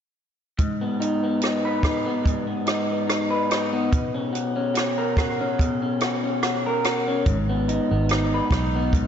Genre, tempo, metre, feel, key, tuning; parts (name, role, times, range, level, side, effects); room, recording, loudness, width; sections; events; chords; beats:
indie pop, bedroom pop; 72 BPM; 4/4; swing 55% on 16ths; G# minor; A4 = 440 Hz
electric guitar through a small old amp; accompaniment; 0.6-9.1 s; G#2 to B4; -23 LUFS; left 1 dB; lush chorus, warbly pitch drift
compact cocktail drum kit; drums; 0.6-9.1 s; hi-hat, kick drum, rim click; -25 LUFS; right 1 dB
vintage muted fingered electric bass; bass; 7.3-9.1 s; G#1 to B1; -24 LUFS; right 1 dB
wet lush hall reverb, RT60 2.0 s, small room ambience; dreamy mix soaked in reverb, nothing above 7.6 kHz; -21 LUFS; side -8 dB against mid
0.6-9.1 A section
0.6 G#m; 3.9 Bsus2; 7.3 G#m
| 0.59 1.42 2.26 3.09 | 3.92 4.76 5.59 6.43 | 7.26 8.10 8.93